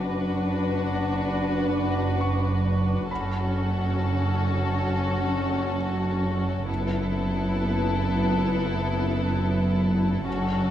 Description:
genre	cinematic, suspense film score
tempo	free time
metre	none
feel	none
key	unclear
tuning	A4 = 441 Hz
part	muted symphonic violin section	melody	0.0-10.7 s	A4 to B4	-33 LUFS	left 5 dB	none
part	muted symphonic violin section	second line	0.0-10.7 s	E4 to F#4	-32 LUFS	left 3 dB	none
part	muted symphonic viola section	accompaniment	0.0-10.7 s	B3 to D4	-30 LUFS	equal	none
part	muted symphonic cello section	bass	0.0-10.7 s	F#2	-28 LUFS	right 1 dB	none
part	muted symphonic double bass section	bass	0.0-10.7 s	F#1	-28 LUFS	right 2 dB	none
part	bright grand piano	texture	2.2-6.7 s	B5 to C#6	-39 LUFS	equal	none
room	moderate scoring stage reverb, RT60 1.8 s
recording	dark, warm production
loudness	-23 LUFS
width	side -11 dB against mid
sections	0.0-10.7 A section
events	none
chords	0.0 Bm/F#; 3.1 F#m; 6.7 Esus4/F#

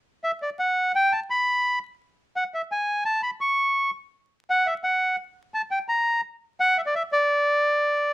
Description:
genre	tango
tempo	170 BPM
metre	3/4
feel	rubato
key	D major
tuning	A4 = 440 Hz
part	bandoneon	solo	0.2-8.1 s	D5 to C#6	-21 LUFS	equal	none
room	light reverb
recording	worn, warbling old tape, cassette tape, vinyl crackle, warbly pitch drift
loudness	-22 LUFS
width	side -18 dB against mid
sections	0.0-8.1 A section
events	none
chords	none

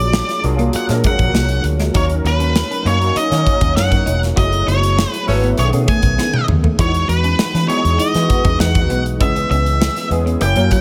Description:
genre	polished 1980s jazz-funk pop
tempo	99 BPM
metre	4/4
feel	straight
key	unclear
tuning	A4 = 444 Hz
part	octave-fuzz lead guitar	melody	0.0-10.8 s	B4 to G#5	-22 LUFS	equal	distortion
part	barky tine electric piano	accompaniment	0.0-10.8 s	D3 to C#5	-23 LUFS	equal	ensemble chorus
part	vintage muted fingered electric bass	bass	0.0-10.7 s	E1 to E3	-20 LUFS	equal	none
part	clean electric guitar	riff	0.1-10.8 s	F#3 to F#4	-28 LUFS	equal	analog chorus
part	modern studio drum kit	drums	0.1-10.8 s	hi-hat, kick drum, snare drum, toms	-21 LUFS	equal	gated reverb
part	clear horn section	second line	5.3-5.5 s	C#4 to C#5	-26 LUFS	equal	none
room	small room ambience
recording	none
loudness	-16 LUFS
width	mono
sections	0.0-10.8 A section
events	band accent 4.4-6.8; drum fill 6.2-6.8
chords	0.0 A#7b13; 2.0 D#m7; 4.4 F#m11; 5.6 B13; 6.8 Emaj9; 9.2 C#m7

